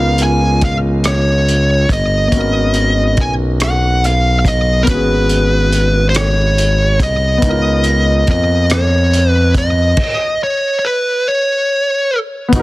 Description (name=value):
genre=slow six-eight R&B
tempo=47 BPM (dotted quarters)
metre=6/8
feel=straight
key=unclear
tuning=A4 = 440 Hz
part: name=fuzz lead guitar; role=melody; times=0.0-12.2 s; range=A#4 to G#5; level=-16 LUFS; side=equal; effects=distortion
part: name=dark baby grand piano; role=accompaniment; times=0.0-12.6 s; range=A#3 to A#4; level=-20 LUFS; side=left 2 dB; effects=none
part: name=smooth gliding synth bass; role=bass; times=0.0-12.6 s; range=G1 to E#2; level=-14 LUFS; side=equal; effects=none
part: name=cloth-damped thuddy drum kit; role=drums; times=0.2-12.6 s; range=crash cymbal, hi-hat, kick drum, rim click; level=-18 LUFS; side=equal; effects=soft clipping on snare
room=small room ambience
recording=dense, heavily limited modern master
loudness=-11 LUFS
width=side -18 dB against mid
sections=0.0-12.5 A section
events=stop 10.0-12.5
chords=0.0 C#13; 2.3 G#m11; 7.4 C#13